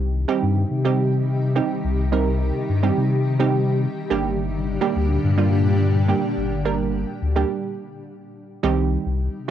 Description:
pop; 106 BPM; 4/4; straight; C minor; A4 = 440 Hz
granular cloud pad; sustained chords; 0.2-9.5 s; Bb2 to G4; -26 LUFS; left 2 dB; built-in reverb
saturated sub bass; bass; 0.0-9.3 s; G1 to C3; -21 LUFS; left 2 dB
glassy wavetable pluck; accompaniment; 0.3-9.5 s; Eb3 to Bb4; -23 LUFS; right 7 dB; chorus
light reverb; home recording on cassette; -19 LUFS; side -10 dB against mid
0.0-8.6 A section
stop 7.5-8.6
0.0 Cm; 4.1 Gm; 8.6 Cm
0.14 0.71 1.27 | 1.84 2.41 2.97 3.54 | 4.11 4.67 5.24 5.80 | 6.37 6.94 7.50 8.07 | 8.63 9.20

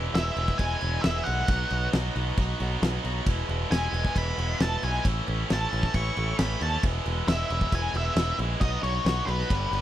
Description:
classic rock; 135 BPM; 4/4; straight; E major; A4 = 440 Hz
distorted electric guitar; riff; 0.0-9.8 s; E2 to G4; -31 LUFS; right 1 dB; overdrive
picked electric bass; bass; 0.0-9.8 s; E1 to D#2; -29 LUFS; equal
octave-fuzz lead guitar; melody; 0.1-9.8 s; B4 to C#6; -30 LUFS; left 1 dB; distortion
huge arena drum kit; drums; 0.1-9.8 s; crash cymbal, kick drum, snare drum; -29 LUFS; equal
little or no reverb; dry, close 1970s-style studio recording; -24 LUFS; side -12 dB against mid
0.0-9.8 A section
0.0 E; 1.5 B; 3.3 E; 5.1 A; 6.8 E; 8.6 B
0.15 0.60 1.04 | 1.49 1.94 2.38 2.83 | 3.27 3.72 4.16 4.61 | 5.05 5.50 5.94 6.39 | 6.83 7.28 7.72 8.17 | 8.61 9.06 9.50

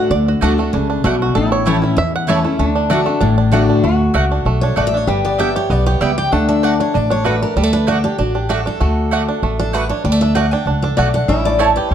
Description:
bluegrass; 193 BPM; 4/4; swing 53% on 8ths; D major; A4 = 440 Hz
bluegrass banjo; melody; 0.0-11.9 s; E3 to F#5; -21 LUFS; right 6 dB
lap resonator guitar; second line; 0.0-11.9 s; D4 to G4; -22 LUFS; left 5 dB
picked steel-string acoustic guitar; accompaniment; 0.0-11.9 s; E2 to G5; -18 LUFS; left 3 dB
upright bass; bass; 0.1-11.9 s; G1 to E2; -18 LUFS; equal
mandolin; stabs; 0.4-11.7 s; A3 to A5; -21 LUFS; right 5 dB
moderate large studio reverb, RT60 1.1 s; dark, warm production; -13 LUFS; side -9 dB against mid
0.0-3.8 A section; 3.8-11.9 A section
five-string banjo solo 0.0-3.8; steel-string acoustic guitar solo 3.8-11.9
0.0 D; 1.4 A; 2.6 D; 5.1 G; 6.3 D; 11.3 A
| 0.11 0.42 0.73 1.04 | 1.35 1.66 1.97 2.28 | 2.60 2.90 3.21 3.53 | 3.84 4.15 4.46 4.77 | 5.08 5.39 5.70 6.01 | 6.32 6.63 6.94 7.25 | 7.56 7.88 8.19 8.50 | 8.81 9.12 9.43 9.74 | 10.05 10.36 10.67 10.98 | 11.29 11.60 11.91

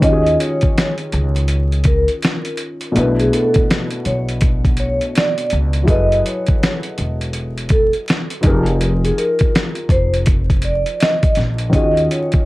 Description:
lo-fi hip hop; 82 BPM; 4/4; swing 63% on 16ths; A4 = 440 Hz
vibraphone with soft mallets; melody; 0.0-12.5 s; Ab4 to Eb5; -20 LUFS; equal; low-pass filter, tape echo
dark upright piano; accompaniment; 0.0-12.5 s; B2 to B4; -22 LUFS; left 1 dB; cassette tape, low-pass filter
upright bass; bass; 0.0-12.1 s; Fb1 to Eb2; -18 LUFS; equal
dusty soul sampler-style drum kit; drums; 0.0-12.5 s; hi-hat, kick drum, snare drum; -17 LUFS; equal; overdrive
light reverb; vinyl crackle; -14 LUFS; side -19 dB against mid
0.0-12.5 A section
0.0 Ebm11; 2.9 Bm11; 5.9 Gbm11; 8.4 Fm11; 11.7 Ebm11
| 0.02 0.75 1.49 2.22 | 2.95 3.68 4.41 5.14 | 5.88 6.61 7.34 8.07 | 8.80 9.54 10.27 11.00 | 11.73

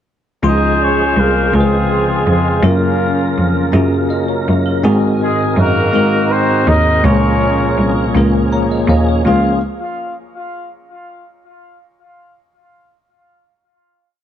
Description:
slow gospel; 54 BPM (dotted quarters); 6/8; straight; Db major; A4 = 440 Hz
clear horn section; melody; 0.4-9.6 s; Ab3 to F5; -17 LUFS; left 1 dB; tape echo
bell-like tine electric piano; accompaniment; 0.4-9.6 s; Db2 to C6; -18 LUFS; left 2 dB; medium stereo tremolo
tonewheel organ; sustained chords; 0.4-9.6 s; Db3 to Bb4; -21 LUFS; right 3 dB; slow rotary speaker, overdrive, chorus vibrato
clear cello; bass; 0.4-9.6 s; C2 to Ab2; -16 LUFS; equal
moderate plate reverb, RT60 2.6 s; echo-heavy mix; -11 LUFS; side -10 dB against mid
0.4-9.2 A section; 9.2-11.4 final chord
tine electric piano fill 8.1-9.2
0.4 Dbmaj7; 2.6 Gbmaj7; 4.8 Ab7; 7.0 Db6
| 0.45 1.54 | 2.64 3.75 | 4.84 5.95 | 7.05 8.15 | 9.25

